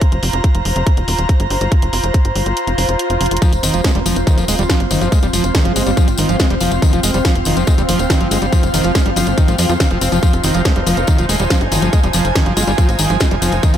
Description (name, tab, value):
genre	psychedelic trance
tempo	141 BPM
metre	4/4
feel	straight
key	F minor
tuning	A4 = 440 Hz
part	electronic kick drum	drums	0.0-13.7 s	none	-14 LUFS	equal	none
part	garage drum kit	drums	0.0-13.8 s	hi-hat, snare drum	-22 LUFS	equal	none
part	airy breathy pad	texture	0.0-13.8 s	F4 to Bb5	-21 LUFS	equal	chorus, sidechain pumping
part	tight sequencer bass	bass	0.1-13.8 s	Eb1 to F2	-19 LUFS	equal	tube saturation
part	swell	sound effects	2.8-3.4 s	none	-25 LUFS	left 4 dB	none
part	bubbling stepped-filter texture	sustained chords	3.4-13.8 s	F3 to Eb4	-23 LUFS	right 1 dB	chorus, built-in reverb, sidechain pumping
part	screaming distorted acid line	riff	3.4-13.8 s	Eb3 to C4	-20 LUFS	moving between left 3 dB and right 3 dB	distortion, chorus, auto-pan, sidechain pumping, digital delay
part	tambourine	percussion	3.4-13.8 s	none	-25 LUFS	left 7 dB	none
part	vowel-sweep wobble bass	second line	3.8-6.0, 10.7-13.2 s	Ab3 to F4	-30 LUFS	right 3 dB	none
room	light reverb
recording	none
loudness	-12 LUFS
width	side -10 dB against mid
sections	0.0-13.8 A section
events	kick drops out 2.6-3.4; swell 2.8-3.4; drum fill 3.2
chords	0.0 F5